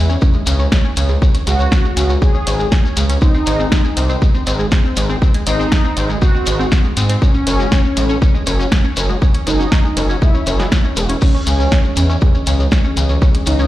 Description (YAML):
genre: melodic techno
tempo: 120 BPM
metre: 4/4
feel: straight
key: C# harmonic minor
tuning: A4 = 437 Hz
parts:
  - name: mellow synth brass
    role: melody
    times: 0.0-13.7 s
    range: C#4 to G#4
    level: -22 LUFS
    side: equal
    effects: chorus, cassette tape, sidechain pumping, digital delay
  - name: tight sequenced synth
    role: arpeggios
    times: 0.0-13.7 s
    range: G#3 to C#5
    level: -23 LUFS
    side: left 1 dB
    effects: chorus, sidechain pumping, digital delay
  - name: gritty driven synth bass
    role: bass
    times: 0.0-13.7 s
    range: E1 to G#2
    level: -16 LUFS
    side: equal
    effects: distortion, sidechain pumping
  - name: shekere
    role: percussion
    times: 0.1-13.7 s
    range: none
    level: -26 LUFS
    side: left 3 dB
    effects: none
  - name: electronic kick drum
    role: drums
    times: 0.2-13.3 s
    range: none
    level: -14 LUFS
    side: equal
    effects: overdrive, small room reverb
  - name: punchy analog drum machine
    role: drums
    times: 0.5-13.6 s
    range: crash cymbal, hi-hat, snare drum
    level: -22 LUFS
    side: equal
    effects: sidechain pumping on cymbals, small room reverb, sidechain pumping on hats
  - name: dark analog pad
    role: sustained chords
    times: 11.4-13.7 s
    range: E3 to D#5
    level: -26 LUFS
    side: left 1 dB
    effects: chorus, sidechain pumping
room: digital ambience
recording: played on a big sound system in a bare room, large studio reverb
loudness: -12 LUFS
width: side -15 dB against mid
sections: 0.0-13.7 A section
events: none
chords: 0.0 C#5; 3.2 G#; 7.2 F#5; 11.2 C#madd9